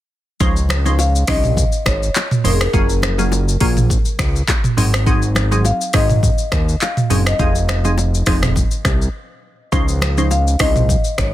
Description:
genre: afrobeats.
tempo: 103 BPM.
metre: 4/4.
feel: swing 55% on 16ths.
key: Db major.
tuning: A4 = 440 Hz.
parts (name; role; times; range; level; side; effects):
glassy wavetable pluck; accompaniment; 0.4-10.9 s; F3 to C5; -22 LUFS; right 1 dB; chorus.
fat analog bass; bass; 0.4-11.3 s; F1 to Eb2; -17 LUFS; equal; none.
afro-pop drum kit; drums; 0.4-11.3 s; finger snaps, handclaps, hi-hat, kick drum, rim click, shaker, toms; -18 LUFS; equal; overdrive, soft clipping on snare.
congas and bongos; percussion; 0.4-11.3 s; none; -27 LUFS; left 5 dB; none.
marimba with medium mallets; melody; 1.0-11.3 s; Ab4 to F5; -23 LUFS; left 2 dB; tape echo.
room: little or no reverb.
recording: dense, heavily limited modern master.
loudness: -14 LUFS.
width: side -14 dB against mid.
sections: 0.4-11.3 A section.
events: break 9.1-9.7.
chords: 0.4 Dbmaj9; 2.7 Gbmaj9; 4.8 Ab7; 7.4 Fm7; 9.7 Dbmaj9.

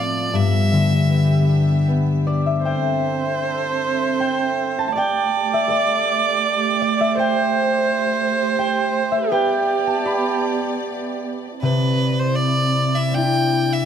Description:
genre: celtic folk, Celtic slow air.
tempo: 76-85 BPM.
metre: 3/4.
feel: rubato.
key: C major.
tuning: A4 = 444 Hz.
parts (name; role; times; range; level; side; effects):
clear fiddle; melody; 0.0-1.9, 11.6-13.9 s; B4 to G5; -23 LUFS; right 2 dB; none.
concert harp; accompaniment; 0.0-13.9 s; G2 to B5; -20 LUFS; left 2 dB; none.
dark studio string section; sustained chords; 0.0-13.9 s; A2 to E5; -26 LUFS; right 5 dB; none.
rich viola; second line; 2.6-11.2 s; G4 to D5; -21 LUFS; right 5 dB; none.
room: light reverb.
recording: close, detailed microphones.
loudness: -17 LUFS.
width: side -8 dB against mid.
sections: 0.0-2.6 A section; 2.6-11.6 B section; 11.6-13.9 A section.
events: harp solo 2.6-11.6.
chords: 0.3 G6; 2.6 C6; 4.9 Gsus2; 7.2 Am7; 9.3 G; 11.6 Cadd9.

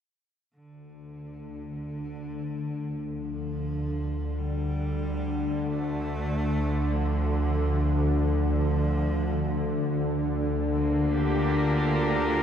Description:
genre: dark ambient drone.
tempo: free time.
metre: none.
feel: none.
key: unclear.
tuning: A4 = 441 Hz.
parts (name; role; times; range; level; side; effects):
rich cello; melody; 0.5-12.4 s; D3 to A3; -38 LUFS; right 1 dB; ping-pong delay.
bowed-like drone; drone; 1.0-12.4 s; D2 to D3; -26 LUFS; equal; built-in reverb.
rich chamber cello section; sustained chords; 10.7-12.4 s; Bb3 to Bb4; -28 LUFS; right 1 dB; none.
backwards swelling texture; texture; 11.2-12.4 s; F4 to F5; -36 LUFS; equal; built-in reverb.
room: wet cathedral reverb, RT60 5.5 s.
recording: in a vast, echoing space.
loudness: -25 LUFS.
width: side -8 dB against mid.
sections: 0.5-12.4 A section.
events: fade-in on cello 0.5-12.4.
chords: 0.5 N.C.; 10.7 Gm.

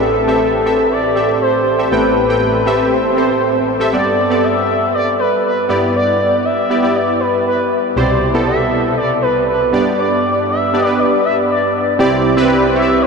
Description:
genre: pop.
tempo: 119 BPM.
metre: 4/4.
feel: straight.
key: unclear.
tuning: A4 = 440 Hz.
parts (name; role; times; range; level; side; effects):
expressive portamento lead; melody; 0.0-13.1 s; A4 to E5; -16 LUFS; left 1 dB; chorus, phaser, ping-pong delay.
warm analog keys; accompaniment; 0.0-13.1 s; A1 to G5; -15 LUFS; right 1 dB; chorus.
room: wet huge ambient reverb, RT60 8.9 s.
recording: dreamy mix soaked in reverb.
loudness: -12 LUFS.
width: side -4 dB against mid.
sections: 0.0-3.9 A section; 3.9-12.0 B section; 12.0-13.1 C section.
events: none.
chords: 0.0 Am7; 3.9 Gadd9; 5.7 Em7/G; 8.0 Cmaj7; 9.7 G; 12.0 Cadd9.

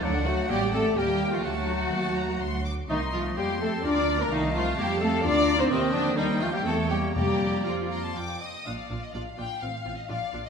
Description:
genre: quick classical-period movement for symphony orchestra.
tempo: 118-131 BPM.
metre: 3/4.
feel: rubato.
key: Bb major.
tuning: A4 = 440 Hz.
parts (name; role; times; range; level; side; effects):
rich studio violin section; melody; 0.0-10.5 s; D5 to Eb6; -37 LUFS; left 4 dB; none.
clear clarinet; second line; 0.0-8.2 s; Eb3 to F4; -33 LUFS; left 2 dB; none.
clear oboe; second line; 0.0-8.4 s; Bb4 to F#5; -36 LUFS; right 1 dB; none.
rich studio violin section; second line; 0.0-10.5 s; C4 to F5; -32 LUFS; left 3 dB; none.
silver concert flute; second line; 0.0-8.2 s; C5 to D6; -36 LUFS; left 2 dB; none.
rich studio viola section; accompaniment; 0.0-10.4 s; C4 to D5; -33 LUFS; right 2 dB; none.
mellow French horn section; sustained chords; 0.0-8.2 s; C3 to D4; -31 LUFS; left 3 dB; none.
warm studio cello section; bass; 0.0-10.4 s; A2 to D4; -33 LUFS; right 2 dB; none.
warm studio double bass section; bass; 0.0-10.4 s; A1 to F2; -32 LUFS; right 3 dB; none.
timpani; percussion; 7.2-7.9 s; F2; -33 LUFS; left 1 dB; none.
room: wet scoring stage reverb, RT60 1.6 s.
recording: minimal, uncompressed stereo recording.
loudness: -24 LUFS.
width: side -6 dB against mid.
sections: 0.0-8.7 A section; 8.7-10.5 B section.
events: none.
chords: 0.0 D; 1.0 Eb; 1.5 D; 2.9 F7/C; 3.8 Bb/D; 4.3 F7/C; 5.3 Bb/D; 5.7 Cm/Eb; 6.7 Edim7; 7.2 Bb/F; 8.2 Ebmaj7; 8.7 Bb; 9.6 F.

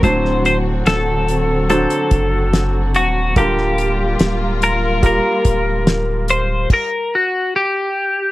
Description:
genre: pop ballad.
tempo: 72 BPM.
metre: 4/4.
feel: straight.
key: G harmonic minor.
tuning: A4 = 440 Hz.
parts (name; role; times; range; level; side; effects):
twelve-string electric guitar; melody; 0.0-8.3 s; F#4 to C5; -18 LUFS; left 1 dB; none.
bright concert grand piano; accompaniment; 0.0-6.7 s; A2 to C5; -21 LUFS; right 1 dB; none.
dark studio string section; sustained chords; 0.0-6.7 s; D3 to F#4; -23 LUFS; equal; none.
warm sub bass; bass; 0.0-6.7 s; D1 to F#1; -20 LUFS; equal; none.
damped 70s drum kit; drums; 0.0-6.9 s; crash cymbal, hi-hat, kick drum, snare drum; -16 LUFS; equal; none.
room: studio reverb.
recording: dry, close 1970s-style studio recording.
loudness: -14 LUFS.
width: side -17 dB against mid.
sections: 0.0-8.3 A section.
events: none.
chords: 0.0 D7; 3.4 Gm7/D; 6.7 N.C..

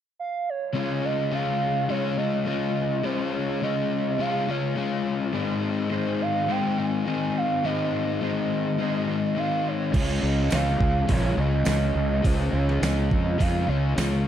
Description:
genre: rock, shoegaze and dream pop.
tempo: 104 BPM.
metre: 4/4.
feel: straight.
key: unclear.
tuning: A4 = 439 Hz.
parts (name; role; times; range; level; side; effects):
hollow clarinet-like synth lead; melody; 0.2-14.3 s; C5 to Ab5; -29 LUFS; right 6 dB; chorus, tape echo.
crunchy overdriven guitar; riff; 0.7-14.3 s; Ab2 to F4; -26 LUFS; left 5 dB; wide subtle chorus.
twangy electric guitar; riff; 0.7-14.3 s; Db3 to C5; -40 LUFS; right 14 dB; reverse reverb.
fuzz fingered electric bass; bass; 9.9-14.2 s; Bb1 to F2; -24 LUFS; right 1 dB; overdrive.
gated 80s digital drum machine; drums; 9.9-14.1 s; crash cymbal, hi-hat, kick drum, snare drum; -26 LUFS; right 1 dB; gated reverb, gated reverb snare, overdrive.
tambourine; percussion; 10.5-14.1 s; none; -41 LUFS; right 19 dB; none.
room: light reverb.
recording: dark, warm production.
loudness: -22 LUFS.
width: side -10 dB against mid.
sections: 0.7-14.3 A section.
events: none.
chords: 0.0 N.C.; 0.7 Dbadd9; 5.3 Abadd9; 9.9 Dbadd9.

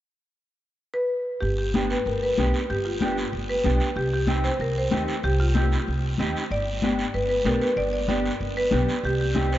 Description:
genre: latin, cumbia.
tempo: 189 BPM.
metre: 4/4.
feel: straight.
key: unclear.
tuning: A4 = 440 Hz.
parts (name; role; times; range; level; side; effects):
marimba with medium mallets; melody; 0.9-9.6 s; F4 to D5; -26 LUFS; equal; none.
upright bass; bass; 1.4-9.5 s; G1 to Eb2; -26 LUFS; equal; none.
congas; percussion; 1.4-9.5 s; none; -32 LUFS; left 3 dB; none.
guiro; percussion; 1.4-9.6 s; none; -35 LUFS; right 2 dB; none.
mellow electric guitar; accompaniment; 1.7-9.6 s; B3 to G4; -28 LUFS; right 1 dB; ensemble chorus.
room: moderate cathedral reverb, RT60 5.6 s.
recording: in a vast, echoing space, nothing above 7.6 kHz.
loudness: -22 LUFS.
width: side -13 dB against mid.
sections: 0.2-1.4 A section; 1.4-9.6 B section.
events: none.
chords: 0.2 N.C.; 1.4 G; 4.0 Cm; 6.5 G; 9.0 Cm.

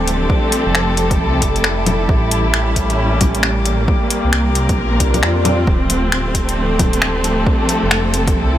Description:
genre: future garage.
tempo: 134 BPM.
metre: 4/4.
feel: swing 62% on 16ths.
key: D minor.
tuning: A4 = 441 Hz.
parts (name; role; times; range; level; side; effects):
warm symphonic string section; sustained chords; 0.0-8.6 s; F3 to Bb4; -19 LUFS; equal; sidechain pumping.
dark detuned saw bass; bass; 0.0-8.6 s; D1 to F2; -19 LUFS; equal; sidechain pumping.
drifting glass-harmonics texture; texture; 0.0-8.6 s; G3 to G4; -24 LUFS; left 2 dB; chorus, built-in reverb.
deep house drum kit; drums; 0.1-8.3 s; bongos, finger snaps, hi-hat; -21 LUFS; left 2 dB; overdrive, small room ambience.
electronic kick drum; drums; 0.3-8.3 s; none; -18 LUFS; equal; overdrive, small room ambience.
swell; sound effects; 5.0-5.7 s; none; -25 LUFS; left 2 dB; none.
room: light reverb.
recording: none.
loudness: -13 LUFS.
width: side -12 dB against mid.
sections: 0.0-8.6 A section.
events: swell 5.0-5.7.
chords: 0.3 Fmaj7; 2.1 A7b9; 3.9 C7sus4; 5.7 Dm7; 7.5 Fmaj7.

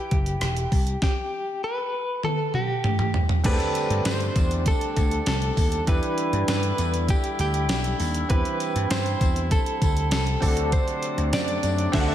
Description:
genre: 1980s-style pop.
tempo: 99 BPM.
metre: 4/4.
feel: straight.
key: unclear.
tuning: A4 = 441 Hz.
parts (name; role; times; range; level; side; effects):
direct-recorded clean electric guitar; melody; 0.0-12.1 s; G4 to F#5; -28 LUFS; equal; tube saturation, tremolo, slapback echo.
clear concert grand piano; accompaniment; 0.0-12.1 s; D3 to B5; -30 LUFS; right 2 dB; slapback echo.
vintage slap bass; bass; 0.1-12.1 s; E1 to G2; -26 LUFS; equal; none.
clean 12-bit digital drum machine; drums; 0.1-12.1 s; crash cymbal, hi-hat, kick drum, rim click, snare drum, tambourine, toms; -25 LUFS; equal; none.
mellow woodwind section; sustained chords; 3.4-12.1 s; C3 to E4; -33 LUFS; left 1 dB; none.
tambourine; percussion; 3.8-11.8 s; none; -43 LUFS; left 7 dB; none.
room: moderate lush hall reverb, RT60 2.1 s.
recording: big arena sound.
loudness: -21 LUFS.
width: side -11 dB against mid.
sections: 0.0-3.5 A section; 3.5-12.1 B section.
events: drum fill 2.2-3.5; band accent 11.9.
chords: 0.0 Emadd9; 0.7 C5; 3.5 D7sus4; 5.9 Em7; 8.3 Cmaj7/E; 10.4 D7.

